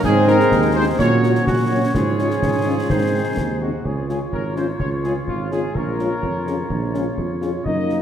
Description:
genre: military-style march for wind band.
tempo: 126 BPM.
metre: 2/4.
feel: straight.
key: Db major.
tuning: A4 = 440 Hz.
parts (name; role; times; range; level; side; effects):
mellow trumpet section; melody; 0.0-8.0 s; F4 to Eb5; -25 LUFS; left 1 dB; none.
warm woodwind section; second line; 0.0-8.0 s; Eb4 to Eb5; -26 LUFS; left 1 dB; none.
warm trombone section; sustained chords; 0.0-3.6 s; Eb3 to Db4; -23 LUFS; right 2 dB; none.
mellow tuba; bass; 0.0-8.0 s; Ab1 to Bb2; -21 LUFS; right 3 dB; none.
concert snare drum, clash cymbals and concert bass drum; drums; 0.0-8.0 s; none; -27 LUFS; left 1 dB; none.
mellow French horn section; accompaniment; 0.3-8.0 s; Gb3 to Gb4; -26 LUFS; left 5 dB; none.
room: wet concert hall reverb, RT60 2.2 s.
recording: none.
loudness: -17 LUFS.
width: side -9 dB against mid.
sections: 0.0-3.8 A section; 3.8-8.0 B section.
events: none.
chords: 0.0 Ab; 1.0 Gb/Bb; 1.9 Db/Ab; 2.9 Ab; 3.8 Db; 5.8 Bbm7.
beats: | 0.04 0.52 | 0.99 1.47 | 1.95 2.42 | 2.90 3.37 | 3.85 4.33 | 4.80 5.28 | 5.75 6.23 | 6.71 7.18 | 7.66.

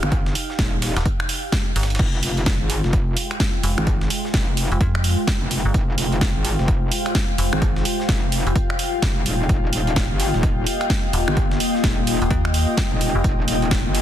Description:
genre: bass house.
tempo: 128 BPM.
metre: 4/4.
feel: swing 62% on 16ths.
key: F minor.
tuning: A4 = 440 Hz.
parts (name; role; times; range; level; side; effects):
metallic wobble bass; bass; 0.0-14.0 s; Eb1 to Ab1; -23 LUFS; equal; distortion, chorus, overdrive, sidechain pumping.
house drum kit; drums; 0.0-14.0 s; crash cymbal, finger snaps, hi-hat, snare drum; -25 LUFS; right 1 dB; none.
airy breathy pad; texture; 0.0-14.0 s; Ab3 to G5; -28 LUFS; left 2 dB; chorus, sidechain pumping.
breakbeat sampler-style drum kit; drums; 0.1-14.0 s; hi-hat, snare drum; -34 LUFS; right 2 dB; none.
electronic kick drum; drums; 0.1-13.8 s; none; -22 LUFS; equal; none.
metallic FM bass; bass; 1.0-13.2 s; Eb1 to F2; -20 LUFS; equal; tube saturation, sidechain pumping.
deep dark ambient pad; sustained chords; 3.2-14.0 s; Ab3 to G5; -28 LUFS; left 1 dB; chorus, built-in reverb, sidechain pumping.
room: little or no reverb.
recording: dense, heavily limited modern master.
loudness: -18 LUFS.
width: side -11 dB against mid.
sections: 0.0-14.0 A section.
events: none.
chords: 0.0 Ebadd9; 2.0 Fmadd9; 9.5 Ebadd9.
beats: | 0.12 0.59 1.06 1.52 | 1.99 2.46 2.93 3.40 | 3.87 4.34 4.81 5.27 | 5.74 6.21 6.68 7.15 | 7.62 8.09 8.56 9.02 | 9.49 9.96 10.43 10.90 | 11.37 11.84 12.31 12.77 | 13.24 13.71.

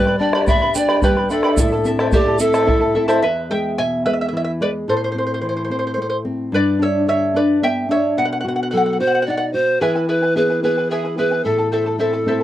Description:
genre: andean folk, Andean ensemble.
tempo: 73 BPM (dotted quarters).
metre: 6/8.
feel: straight.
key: A minor.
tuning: A4 = 441 Hz.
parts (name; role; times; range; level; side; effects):
breathy pan flute; melody; 0.0-3.0, 8.7-12.4 s; G4 to E5; -18 LUFS; equal; none.
breathy large quena; second line; 0.0-3.0 s; D5 to B5; -25 LUFS; right 6 dB; none.
charango; accompaniment; 0.0-12.4 s; E4 to B5; -21 LUFS; equal; none.
nylon-string guitar; accompaniment; 0.0-12.4 s; E2 to G#4; -20 LUFS; left 1 dB; none.
bombo; percussion; 0.1-3.2 s; none; -20 LUFS; equal; none.
tube shaker; percussion; 0.5-3.2 s; none; -30 LUFS; right 7 dB; none.
room: light reverb.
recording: dry, close 1970s-style studio recording.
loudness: -16 LUFS.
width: side -13 dB against mid.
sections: 0.0-3.2 A section; 3.2-9.8 B section; 9.8-12.4 C section.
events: charango solo 3.2-9.8.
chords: 0.0 G; 1.6 Am; 3.2 E; 4.9 Am; 6.5 G; 8.2 B; 9.8 E; 11.5 Am.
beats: 0.75 | 1.58 2.40 | 3.23 4.06 | 4.88 5.71 | 6.53 7.35 | 8.18 9.00 | 9.82 10.64 | 11.45 12.27.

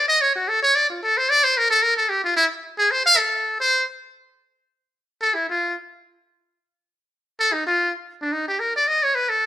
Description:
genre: jazz.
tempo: 221 BPM.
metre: 4/4.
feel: swing 59% on 8ths.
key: unclear.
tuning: A4 = 439 Hz.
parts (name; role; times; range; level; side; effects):
trumpet with metal mute; solo; 0.0-9.5 s; D4 to F5; -18 LUFS; equal; none.
room: moderate stone room reverb, RT60 1.1 s.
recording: band playing live in one room.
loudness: -18 LUFS.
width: side -12 dB against mid.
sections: 0.0-5.0 A section; 5.0-9.5 B section.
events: muted trumpet solo 0.0-5.0.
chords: none.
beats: 0.16 0.43 | 0.70 0.98 1.25 1.52 | 1.79 2.06 2.33 2.60 | 2.88 3.15 3.42 3.69 | 3.96 4.23 4.50 4.77 | 5.05 5.32 5.59 5.86 | 6.13 6.40 6.68 6.95 | 7.22 7.49 7.76 8.03 | 8.30 8.58 8.85 9.12 | 9.39.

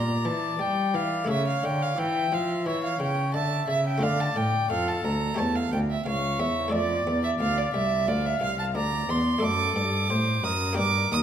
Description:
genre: classical, baroque-style sonata movement with continuo.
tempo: 88 BPM.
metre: 4/4.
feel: rubato.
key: D minor.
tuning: A4 = 440 Hz.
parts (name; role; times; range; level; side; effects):
warm trumpet; melody; 0.0-11.2 s; A4 to F5; -32 LUFS; left 7 dB; none.
rich violin; second line; 0.0-11.2 s; D5 to Eb6; -27 LUFS; right 3 dB; none.
buff-stop harpsichord; accompaniment; 0.0-11.2 s; C2 to D5; -32 LUFS; left 1 dB; none.
dark cello; bass; 0.0-11.2 s; C2 to G3; -28 LUFS; equal; none.
room: wet recital hall reverb, RT60 1.5 s.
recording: none.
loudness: -23 LUFS.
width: side -9 dB against mid.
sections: 0.0-11.2 A section.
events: none.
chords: 0.0 Gm/Bb; 1.3 A/C#; 4.0 Dm; 5.4 A7; 6.7 Dm; 9.4 D/F#.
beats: 0.60 | 1.29 1.98 2.66 3.34 | 4.02 4.70 5.39 6.06 | 6.73 7.40 8.07 8.75 | 9.43 10.10 10.78.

